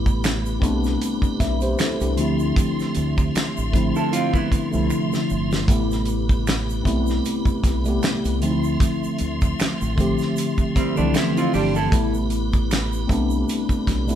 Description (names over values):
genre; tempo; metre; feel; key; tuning
R&B, neo-soul; 77 BPM; 4/4; swing 55% on 16ths; A minor; A4 = 440 Hz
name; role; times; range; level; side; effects
mellow tine electric piano; accompaniment; 0.0-14.2 s; C3 to E5; -22 LUFS; left 1 dB; medium stereo tremolo
tonewheel organ; sustained chords; 0.0-14.2 s; F3 to C6; -33 LUFS; equal; overdrive, chorus vibrato, slow rotary speaker
deep dub fingered electric bass; bass; 0.0-14.2 s; G1 to D2; -25 LUFS; right 1 dB; none
damped 70s drum kit; drums; 0.1-14.2 s; finger snaps, hi-hat, kick drum, snare drum; -22 LUFS; equal; none
egg shaker and finger snaps; percussion; 0.1-14.2 s; none; -37 LUFS; right 5 dB; none
vintage hollow-body jazz guitar; second line; 4.0-5.5, 10.8-12.1 s; G3 to A4; -24 LUFS; right 4 dB; none
room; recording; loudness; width
light reverb; band playing live in one room; -19 LUFS; side -10 dB against mid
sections
0.0-14.2 A section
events
drum fill 4.9-5.7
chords
0.0 Am9; 2.2 Dm9; 5.7 Am9; 8.4 Dm9; 11.9 Am9